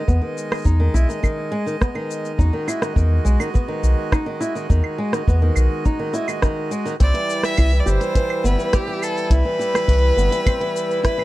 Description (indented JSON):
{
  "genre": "folktronica",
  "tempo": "104 BPM",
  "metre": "4/4",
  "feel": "straight",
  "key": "E major",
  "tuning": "A4 = 440 Hz",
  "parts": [
    { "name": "accordion", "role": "sustained chords", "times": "0.0-11.2 s", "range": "G3 to D#5", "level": "-29 LUFS", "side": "right 2 dB", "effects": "none" },
    { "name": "flamenco guitar", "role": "arpeggios", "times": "0.1-11.2 s", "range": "D#3 to G4", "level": "-24 LUFS", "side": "equal", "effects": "tape echo" },
    { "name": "round analog bass", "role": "bass", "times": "0.1-10.3 s", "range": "G1 to E2", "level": "-16 LUFS", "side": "equal", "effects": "none" },
    { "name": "kick drum", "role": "drums", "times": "0.1-11.2 s", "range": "none", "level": "-19 LUFS", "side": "equal", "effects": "none" },
    { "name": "minimal click drum kit", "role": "drums", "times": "0.1-11.2 s", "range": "cabasa, claves, hi-hat, rim click", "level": "-26 LUFS", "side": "right 1 dB", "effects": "none" },
    { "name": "clear violin", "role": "melody", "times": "7.0-11.2 s", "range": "G4 to E5", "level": "-23 LUFS", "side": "equal", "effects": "tape echo" }
  ],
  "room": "little or no reverb",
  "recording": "dry, close 1970s-style studio recording",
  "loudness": "-17 LUFS",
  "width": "side -17 dB against mid",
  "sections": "0.0-11.2 A section",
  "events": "none",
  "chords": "0.0 Emaj7; 7.0 Cmaj7"
}